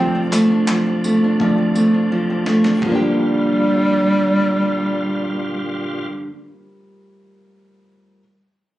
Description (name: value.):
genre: acoustic pop.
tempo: 84 BPM.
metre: 4/4.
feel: straight.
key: G minor.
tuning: A4 = 440 Hz.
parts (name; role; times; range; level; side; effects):
mellow clarinet; melody; 0.0-6.1 s; G3 to C4; -19 LUFS; equal; none.
dark upright piano; accompaniment; 0.0-8.2 s; F2 to D5; -27 LUFS; left 2 dB; none.
nylon-string guitar; accompaniment; 0.0-6.4 s; G2 to G4; -17 LUFS; right 1 dB; none.
bright tonewheel organ; sustained chords; 0.0-6.1 s; F2 to F4; -28 LUFS; left 1 dB; overdrive, chorus vibrato, fast rotary speaker.
dusty soul sampler-style drum kit; drums; 0.3-3.0 s; handclaps, kick drum, snare drum, tambourine, toms; -26 LUFS; equal; none.
room: moderate studio reverb, RT60 1.0 s.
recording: recorded on a phone in the room, club reverb.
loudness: -15 LUFS.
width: side -15 dB against mid.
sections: 0.0-2.8 A section; 2.8-5.7 B section.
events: drum fill 2.1-2.8.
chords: 0.0 Dm7/F; 2.8 Gm7.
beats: 0.69 1.41 2.12 | 2.83 3.54 4.26 4.97.